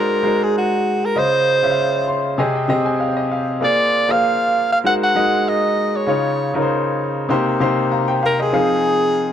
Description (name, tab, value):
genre	soul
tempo	98 BPM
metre	4/4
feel	swing 54% on 16ths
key	unclear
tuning	A4 = 439 Hz
part	edgy alto saxophone	melody	0.0-9.3 s	Gb4 to Gb5	-18 LUFS	right 1 dB	none
part	clear baby grand piano	accompaniment	0.0-9.3 s	C3 to C6	-18 LUFS	left 1 dB	none
room	light reverb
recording	none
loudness	-15 LUFS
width	side -9 dB against mid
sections	0.0-8.5 A section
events	grand piano fill 1.8-3.6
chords	0.0 Ab7; 1.2 Dbmaj7; 2.4 Fm9/C; 3.6 Bb7; 4.9 Ab7; 6.1 Dbmaj7; 7.3 Cm7; 8.5 Fm7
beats	0.55 | 1.16 1.78 2.39 3.01 | 3.62 4.24 4.85 5.47 | 6.08 6.70 7.31 7.92 | 8.54 9.15